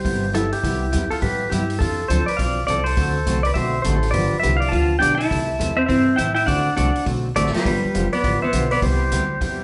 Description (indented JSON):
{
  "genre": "country, western swing",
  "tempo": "205 BPM",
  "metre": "4/4",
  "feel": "swing 62% on 8ths",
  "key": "C major",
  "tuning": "A4 = 437 Hz",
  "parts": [
    { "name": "pedal steel guitar", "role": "melody", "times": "0.0-9.6 s", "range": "E4 to A5", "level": "-24 LUFS", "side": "equal", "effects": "none" },
    { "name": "vintage hollow-body jazz guitar", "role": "second line", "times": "0.0-0.3, 4.7-9.6 s", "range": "G3 to F4", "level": "-26 LUFS", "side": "equal", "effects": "none" },
    { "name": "picked steel-string acoustic guitar", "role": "accompaniment", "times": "0.0-9.6 s", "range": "C3 to A4", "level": "-29 LUFS", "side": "equal", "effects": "none" },
    { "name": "upright bass", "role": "bass", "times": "0.0-9.6 s", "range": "F1 to A2", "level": "-26 LUFS", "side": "equal", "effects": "none" },
    { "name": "swinging big-band drum kit", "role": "drums", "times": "0.0-9.5 s", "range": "hi-hat, kick drum, snare drum", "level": "-31 LUFS", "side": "equal", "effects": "none" }
  ],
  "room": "moderate large studio reverb, RT60 1.0 s",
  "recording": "band playing live in one room, nothing above 10.9 kHz",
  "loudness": "-20 LUFS",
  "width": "mono",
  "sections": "0.6-9.6 A section",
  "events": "none",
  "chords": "0.0 Cmaj7; 1.8 F6; 3.0 D7; 4.1 G7; 5.3 C6; 6.5 D7; 7.7 G7; 8.8 Cmaj7"
}